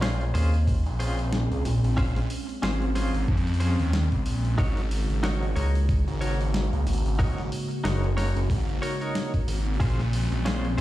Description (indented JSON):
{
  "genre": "glitch hop",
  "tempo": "92 BPM",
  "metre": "4/4",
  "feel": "swing 58% on 16ths",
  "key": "Bb minor",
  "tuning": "A4 = 440 Hz",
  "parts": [
    { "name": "warbly tape-like pad", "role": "sustained chords", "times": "0.3-10.8 s", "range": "Db3 to Gb4", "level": "-33 LUFS", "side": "equal", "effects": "chorus, built-in reverb, sidechain pumping" },
    { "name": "direct-recorded clean electric guitar", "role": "stabs", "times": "0.0-10.8 s", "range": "Db4 to Db5", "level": "-34 LUFS", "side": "equal", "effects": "tremolo, sidechain pumping, dub echo" },
    { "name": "phased detuned saw bass", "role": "bass", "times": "0.0-10.8 s", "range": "Gb1 to F2", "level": "-25 LUFS", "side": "equal", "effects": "phaser, tube saturation" },
    { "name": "boom bap sampler-style drum kit", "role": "drums", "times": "0.0-10.8 s", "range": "hi-hat, snare drum", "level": "-35 LUFS", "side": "left 1 dB", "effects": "overdrive" },
    { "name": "rubbery square bass", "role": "bass", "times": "0.3-0.8, 5.6-6.0, 10.8 s", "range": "Db2 to Eb2", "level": "-22 LUFS", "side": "equal", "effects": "none" },
    { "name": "electronic kick drum", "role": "drums", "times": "0.7-10.0 s", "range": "none", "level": "-25 LUFS", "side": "equal", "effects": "overdrive" }
  ],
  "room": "little or no reverb",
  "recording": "played on a big sound system in a bare room, stone room reverb",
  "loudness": "-23 LUFS",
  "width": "side -15 dB against mid",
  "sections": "0.0-10.8 A section",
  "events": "none",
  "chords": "0.0 Bbm9; 4.6 Ab9sus4; 9.8 Bbm9",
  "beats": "0.02 0.67 1.32 | 1.98 2.63 3.28 3.93 | 4.58 5.24 5.89 6.54 | 7.19 7.84 8.50 9.15 | 9.80 10.45"
}